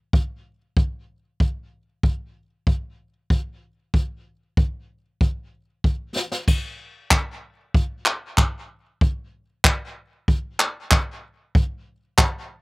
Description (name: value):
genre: pop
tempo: 95 BPM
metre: 4/4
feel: straight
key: none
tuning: none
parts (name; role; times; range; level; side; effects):
- jazz brush drum kit; drums; 0.1-12.3 s; crash cymbal, handclaps, kick drum, snare drum; -18 LUFS; equal; none
- group handclap; percussion; 12.2-12.3 s; none; -28 LUFS; equal; none
room: little or no reverb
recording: recorded outdoors, with no room sound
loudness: -21 LUFS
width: side -27 dB against mid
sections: 0.0-6.5 A section; 6.5-12.6 B section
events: drum fill 5.8-6.5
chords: none